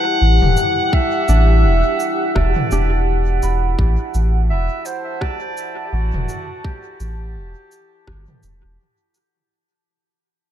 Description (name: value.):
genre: ambient dub.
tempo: 84 BPM.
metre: 4/4.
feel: swing 58% on 16ths.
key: unclear.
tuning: A4 = 441 Hz.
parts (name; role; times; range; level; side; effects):
mellow clarinet; melody; 0.0-8.8 s; F#4 to F#5; -22 LUFS; equal; dub echo.
deep dark ambient pad; sustained chords; 0.0-9.5 s; E4 to A5; -24 LUFS; right 1 dB; chorus, built-in reverb.
Celtic harp; arpeggios; 0.0-8.1 s; D4 to B5; -30 LUFS; right 1 dB; dub echo.
warm sub bass; bass; 0.2-8.8 s; E1 to A1; -16 LUFS; equal; none.
organic electronic drum kit; drums; 0.4-9.3 s; cabasa, rim click, toms; -26 LUFS; equal; dub echo.
electronic kick drum; drums; 0.9-8.2 s; none; -20 LUFS; equal; none.
room: little or no reverb.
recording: dark, warm production.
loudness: -15 LUFS.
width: side -10 dB against mid.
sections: 0.0-9.5 A section.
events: fade-out 1.9-9.5.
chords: 0.0 Em7.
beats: 0.22 | 0.93 1.65 2.36 3.08 | 3.79 4.50 5.22 5.93 | 6.65 7.36 8.08 8.79.